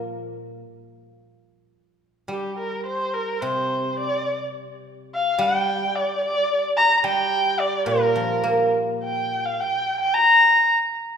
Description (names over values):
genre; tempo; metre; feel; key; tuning
chinese traditional; 107 BPM; 2/4; rubato; unclear; A4 = 440 Hz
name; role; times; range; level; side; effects
guzheng; accompaniment; 0.0-9.6 s; Bb2 to Bb3; -26 LUFS; right 1 dB; none
dark erhu; melody; 2.3-10.7 s; G4 to Bb5; -20 LUFS; equal; none
room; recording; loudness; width
wet scoring stage reverb, RT60 2.0 s; minimal, uncompressed stereo recording; -19 LUFS; side -7 dB against mid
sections
0.0-4.6 A section; 4.6-11.2 B section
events
none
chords
none